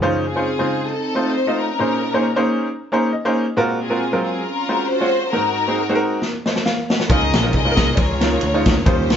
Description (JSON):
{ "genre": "uptempo gospel", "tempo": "136 BPM", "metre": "4/4", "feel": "swing 55% on 8ths", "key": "Db major", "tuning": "A4 = 440 Hz", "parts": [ { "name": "clear baby grand piano", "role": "accompaniment", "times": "0.0-9.2 s", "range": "Ab2 to Bb5", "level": "-20 LUFS", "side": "right 1 dB", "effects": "none" }, { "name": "warm studio string section", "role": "melody", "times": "0.3-9.2 s", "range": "C4 to Eb5", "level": "-21 LUFS", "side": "left 2 dB", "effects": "none" }, { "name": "swinging big-band drum kit", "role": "drums", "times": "6.2-9.2 s", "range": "kick drum, ride cymbal, snare drum", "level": "-18 LUFS", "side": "equal", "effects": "none" }, { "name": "picked electric bass", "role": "bass", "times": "7.1-9.2 s", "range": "Bb1 to Eb2", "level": "-22 LUFS", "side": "equal", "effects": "none" } ], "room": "moderate studio reverb, RT60 0.8 s", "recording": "band playing live in one room, nothing above 7.7 kHz", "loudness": "-16 LUFS", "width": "side -8 dB against mid", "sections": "0.0-9.2 A section", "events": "grand piano fill 2.7-3.6; drum fill 6.2-7.1", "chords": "0.0 Dbmaj9; 0.9 F7; 1.8 Bbm11; 3.6 Gbmaj9#11/Bb; 5.3 Ab9; 7.1 Db69", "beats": "| 0.03 0.47 0.91 1.36 | 1.80 2.24 2.68 3.12 | 3.57 4.01 4.45 4.89 | 5.33 5.78 6.22 6.66 | 7.10 7.54 7.98 8.42 | 8.87" }